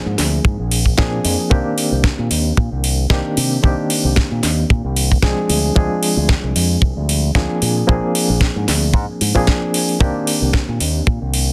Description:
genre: nu-disco, nu disco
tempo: 113 BPM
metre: 4/4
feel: swing 55% on 16ths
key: C minor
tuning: A4 = 440 Hz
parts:
  - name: barky reed electric piano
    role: accompaniment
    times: 0.0-11.5 s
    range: Eb3 to Ab4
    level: -23 LUFS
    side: equal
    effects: overdrive, fast tremolo, sidechain pumping, low-pass filter, dub echo
  - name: fingered electric bass with an envelope filter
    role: bass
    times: 0.1-11.5 s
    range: Bb1 to C3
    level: -22 LUFS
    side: equal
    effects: none
  - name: house drum kit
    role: drums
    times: 0.2-11.5 s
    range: hi-hat, snare drum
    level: -23 LUFS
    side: equal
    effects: none
  - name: kick drum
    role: drums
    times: 0.4-11.2 s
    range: none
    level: -18 LUFS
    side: equal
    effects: soft clipping on snare
room: small room reverb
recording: dense, heavily limited modern master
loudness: -17 LUFS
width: mono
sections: 0.0-11.5 A section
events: none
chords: 0.0 Bb7; 1.5 Cm7; 5.5 Dm7b5; 7.6 Bb7; 10.0 Cm7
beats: 0.45 0.98 | 1.51 2.04 2.58 3.11 | 3.64 4.17 4.70 5.23 | 5.76 6.29 6.82 7.36 | 7.89 8.42 8.95 9.48 | 10.01 10.54 11.07

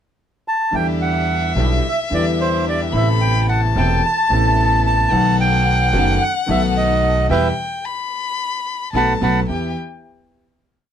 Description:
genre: tango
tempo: 110 BPM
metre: 4/4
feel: rubato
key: E minor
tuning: A4 = 443 Hz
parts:
  - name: bandoneon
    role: melody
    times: 0.5-9.4 s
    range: B4 to B5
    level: -19 LUFS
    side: right 2 dB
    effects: none
  - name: warm violin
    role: second line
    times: 0.7-9.7 s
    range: E5 to B5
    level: -23 LUFS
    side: left 6 dB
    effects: none
  - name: warm concert grand piano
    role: accompaniment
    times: 0.7-9.7 s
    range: E1 to G4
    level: -21 LUFS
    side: left 2 dB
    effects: none
  - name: rich studio string section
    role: stabs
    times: 0.7-9.7 s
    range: B3 to A4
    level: -30 LUFS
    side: right 1 dB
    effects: none
  - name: upright bass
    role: bass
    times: 0.7-9.7 s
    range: E1 to E2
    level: -20 LUFS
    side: right 1 dB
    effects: none
room: light reverb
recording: close, detailed microphones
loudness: -15 LUFS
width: side -9 dB against mid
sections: 0.0-0.7 pickup bar; 0.7-9.5 A section; 9.5-10.9 final chord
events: band accent 7.3-9.5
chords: 0.0 N.C.; 0.7 Em7; 2.9 Amadd9; 5.1 B7; 7.3 Em; 8.9 B7; 9.5 Em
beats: 0.18 | 0.73 1.29 1.84 2.39 | 2.94 3.48 4.03 4.58 | 5.12 5.67 6.21 6.75 | 7.30 7.85 8.39 8.95 | 9.50

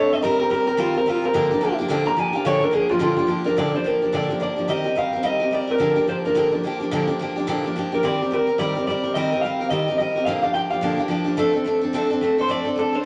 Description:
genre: rock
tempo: 215 BPM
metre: 4/4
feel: swing 61% on 8ths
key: Bb major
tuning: A4 = 440 Hz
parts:
  - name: electric guitar through a small old amp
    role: melody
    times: 0.0-13.1 s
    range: F4 to Bb5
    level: -24 LUFS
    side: equal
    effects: none
  - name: picked steel-string acoustic guitar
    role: accompaniment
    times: 0.0-13.0 s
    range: Bb2 to Bb4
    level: -25 LUFS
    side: equal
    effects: none
room: wet large studio reverb, RT60 1.3 s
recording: vinyl crackle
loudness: -22 LUFS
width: mono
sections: 0.0-3.6 A section; 3.6-13.1 B section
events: clean electric guitar solo 0.0-3.6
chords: 0.2 Eb6; 1.3 Bb6; 4.7 Eb6; 5.8 Bb6; 8.0 Eb6; 10.3 Bb6; 11.4 F6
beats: | 0.23 0.51 0.78 1.06 | 1.34 1.62 1.90 2.17 | 2.45 2.73 3.01 3.29 | 3.57 3.85 4.13 4.41 | 4.68 4.96 5.24 5.52 | 5.80 6.08 6.36 6.64 | 6.92 7.19 7.47 7.75 | 8.03 8.31 8.59 8.87 | 9.14 9.42 9.70 9.98 | 10.26 10.54 10.82 11.10 | 11.37 11.65 11.93 12.21 | 12.49 12.77 13.04

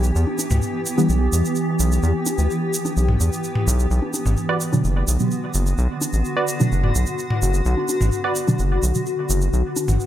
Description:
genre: dub techno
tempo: 128 BPM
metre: 4/4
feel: straight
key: E minor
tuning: A4 = 440 Hz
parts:
  - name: granular cloud pad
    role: sustained chords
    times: 0.0-10.1 s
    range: D3 to G4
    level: -24 LUFS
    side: equal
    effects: built-in reverb
  - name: round analog bass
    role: bass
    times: 0.0-10.0 s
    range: F#1 to E2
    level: -19 LUFS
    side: equal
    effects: none
  - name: egg shaker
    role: percussion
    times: 0.0-10.1 s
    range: none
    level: -29 LUFS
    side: right 3 dB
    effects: none
  - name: electronic congas and toms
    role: percussion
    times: 0.3-10.0 s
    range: none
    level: -27 LUFS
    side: left 1 dB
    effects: none
  - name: deep mellow chord stab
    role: stabs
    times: 1.0-1.1, 4.7-9.1 s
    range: B2 to B3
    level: -22 LUFS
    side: right 1 dB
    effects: chorus, phaser, dub echo
  - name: wavetable chord stab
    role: riff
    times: 4.5-8.3 s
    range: F#4 to D5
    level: -27 LUFS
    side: right 3 dB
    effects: dub echo
room: light reverb, digital ambience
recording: none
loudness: -18 LUFS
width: side -12 dB against mid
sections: 0.0-10.1 A section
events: filter sweep on synth stab 0.0-10.1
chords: 0.0 Em; 3.9 Bm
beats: | 0.15 0.62 1.09 1.56 | 2.03 2.50 2.97 3.44 | 3.90 4.37 4.84 5.31 | 5.78 6.25 6.72 7.19 | 7.66 8.12 8.59 9.06 | 9.53 10.00

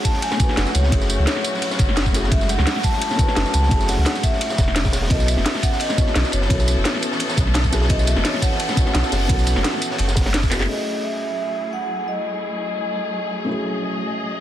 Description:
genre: liquid drum and bass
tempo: 172 BPM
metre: 4/4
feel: swing 53% on 16ths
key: F# dorian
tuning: A4 = 440 Hz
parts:
  - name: vibraphone with medium mallets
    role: melody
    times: 0.0-13.3 s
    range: C#5 to A5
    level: -27 LUFS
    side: equal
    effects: digital delay
  - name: felt-muted upright piano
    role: accompaniment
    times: 0.0-14.4 s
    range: G#3 to C#5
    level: -27 LUFS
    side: left 2 dB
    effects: digital delay
  - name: warm studio string section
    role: sustained chords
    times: 0.0-14.4 s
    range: E3 to D#5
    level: -28 LUFS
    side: left 2 dB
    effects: low-pass filter
  - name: crunchy breakbeat drum kit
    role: drums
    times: 0.0-10.7 s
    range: hi-hat, ride cymbal, snare drum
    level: -29 LUFS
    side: equal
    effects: high-pass filter on cymbals, high-pass filter on hats, high-pass filter on snare, high-pass filter on room
  - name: electronic kick drum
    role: drums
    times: 0.0-10.5 s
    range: none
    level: -20 LUFS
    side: equal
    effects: none
  - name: drum and bass drum kit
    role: drums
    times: 0.1-14.4 s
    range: handclaps, hi-hat, ride cymbal, snare drum, tambourine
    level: -24 LUFS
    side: equal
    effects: low-pass filter on hats, low-pass filter on perc, low-pass filter on snare, low-pass filter on cymbals, low-pass filter on room
  - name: warm sub bass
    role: bass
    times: 0.6-10.7 s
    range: E1 to C#2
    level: -20 LUFS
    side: equal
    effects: none
room: light reverb, small room ambience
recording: dense, heavily limited modern master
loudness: -18 LUFS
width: side -12 dB against mid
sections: 0.0-10.7 A section; 10.7-14.4 B section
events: drop 0.0-10.7; drum fill 10.5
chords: 0.0 F#m9; 5.1 B9sus4; 10.7 F#m9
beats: 0.22 0.57 | 0.92 1.27 1.62 1.97 | 2.32 2.67 3.01 3.36 | 3.71 4.06 4.41 4.76 | 5.11 5.46 5.80 6.15 | 6.50 6.85 7.20 7.55 | 7.90 8.25 8.60 8.94 | 9.29 9.64 9.99 10.34 | 10.69 11.04 11.39 11.73 | 12.08 12.43 12.78 13.13 | 13.48 13.83 14.18

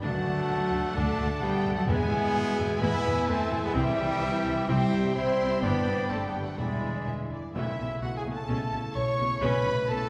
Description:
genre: cinematic, heroic adventure film score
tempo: 128 BPM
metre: 4/4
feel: straight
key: unclear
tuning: A4 = 438 Hz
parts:
  - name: warm symphonic violin section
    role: melody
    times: 0.0-10.1 s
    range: E5 to C#6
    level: -42 LUFS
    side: equal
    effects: none
  - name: concert flute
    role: second line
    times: 0.0-10.1 s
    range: E5 to C#6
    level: -39 LUFS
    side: equal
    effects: none
  - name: dark clarinet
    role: second line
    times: 0.0-7.3 s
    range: D5 to E5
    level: -42 LUFS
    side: equal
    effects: none
  - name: warm studio violin section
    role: second line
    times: 0.0-10.1 s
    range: D5 to C#6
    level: -41 LUFS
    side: equal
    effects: none
  - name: rich symphonic viola section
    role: accompaniment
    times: 0.0-10.0 s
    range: E3 to A4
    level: -41 LUFS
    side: equal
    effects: none
  - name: mellow French horn section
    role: sustained chords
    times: 0.0-10.1 s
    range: E4 to C#5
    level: -34 LUFS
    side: equal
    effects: none
  - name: warm trombone section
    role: sustained chords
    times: 0.0-10.1 s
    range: B2 to A3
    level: -40 LUFS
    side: equal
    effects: none
  - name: concert harp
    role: arpeggios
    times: 0.0-10.1 s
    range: E2 to E5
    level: -41 LUFS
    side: equal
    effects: none
  - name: warm trumpet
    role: stabs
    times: 0.0-10.1 s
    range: G3 to C#5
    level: -38 LUFS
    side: equal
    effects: none
  - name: rich studio double bass section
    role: bass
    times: 0.0-10.0 s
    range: E1 to E2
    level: -35 LUFS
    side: equal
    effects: none
  - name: rich symphonic cello section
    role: bass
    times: 0.0-10.0 s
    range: B2 to C4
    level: -36 LUFS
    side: equal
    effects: none
  - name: timpani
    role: percussion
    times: 0.0-0.7, 7.6-8.2 s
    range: B2 to D3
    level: -41 LUFS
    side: equal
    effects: none
room: wet scoring stage reverb, RT60 1.7 s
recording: heard from further back in the room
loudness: -28 LUFS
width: mono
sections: 0.0-7.6 A section; 7.6-10.1 B section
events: none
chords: 0.0 D; 1.9 E; 3.8 C; 5.6 G; 6.6 E7; 7.6 A/B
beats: | 0.03 0.49 0.95 1.42 | 1.88 2.35 2.81 3.28 | 3.75 4.22 4.69 5.16 | 5.63 6.10 6.59 7.07 | 7.55 8.02 8.49 8.96 | 9.43 9.90

